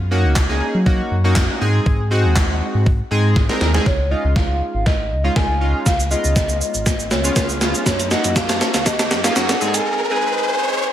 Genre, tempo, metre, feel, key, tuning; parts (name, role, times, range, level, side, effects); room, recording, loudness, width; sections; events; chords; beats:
dance-pop; 120 BPM; 4/4; straight; Db major; A4 = 440 Hz
sub bass with octave; bass; 0.0-9.8 s; Ab1 to Gb3; -20 LUFS; equal; sidechain pumping
chorused retro synth keys; accompaniment; 0.1-10.9 s; Ab3 to Bb4; -22 LUFS; equal; sidechain pumping
gated 80s digital drum machine; drums; 0.4-9.9 s; handclaps, hi-hat, kick drum, shaker, snare drum; -18 LUFS; equal; gated reverb, gated reverb snare
hollow clarinet-like synth lead; melody; 3.9-10.9 s; Db5 to Ab5; -23 LUFS; equal; chorus
riser; sound effects; 6.6-10.9 s; -25 LUFS; equal
light reverb; high-pass filter; -15 LUFS; side -11 dB against mid
0.0-3.9 A section; 3.9-10.9 B section
drum fill 3.4-3.9, 3.9-9.9; build-up 3.9-10.9; filter sweep 3.9-10.9; riser 6.6-10.9
0.0 Gb6; 1.6 Ab; 3.9 Dbadd9; 5.9 Db7; 7.9 Gb6; 9.6 Ab
0.36 0.86 1.36 | 1.86 2.36 2.86 3.36 | 3.86 4.36 4.86 5.36 | 5.86 6.36 6.86 7.36 | 7.86 8.36 8.86 9.36 | 9.86 10.36 10.86